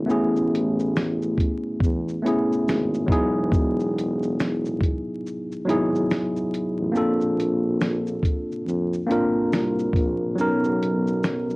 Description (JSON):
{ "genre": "lo-fi hip hop", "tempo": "70 BPM", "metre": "4/4", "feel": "swing 62% on 16ths", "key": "unclear", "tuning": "A4 = 440 Hz", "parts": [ { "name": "mellow tine electric piano", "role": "accompaniment", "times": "0.0-11.6 s", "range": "F#3 to A#4", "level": "-22 LUFS", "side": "equal", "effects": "medium stereo tremolo, low-pass filter" }, { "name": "mellow tuba", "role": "bass", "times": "0.0-11.6 s", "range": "E1 to E#2", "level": "-27 LUFS", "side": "equal", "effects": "none" }, { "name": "dusty soul sampler-style drum kit", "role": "drums", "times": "0.1-11.6 s", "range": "finger snaps, hi-hat, kick drum, shaker, snare drum", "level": "-24 LUFS", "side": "equal", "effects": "cassette tape" } ], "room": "moderate studio ambience, RT60 0.5 s", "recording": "home recording on cassette, vinyl crackle", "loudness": "-21 LUFS", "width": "side -25 dB against mid", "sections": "0.0-10.4 A section; 10.4-11.6 B section", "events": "kick muted 10.4-11.6", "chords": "0.0 Amaj9; 3.1 Emaj9; 6.9 A#maj9; 10.4 Bmaj9" }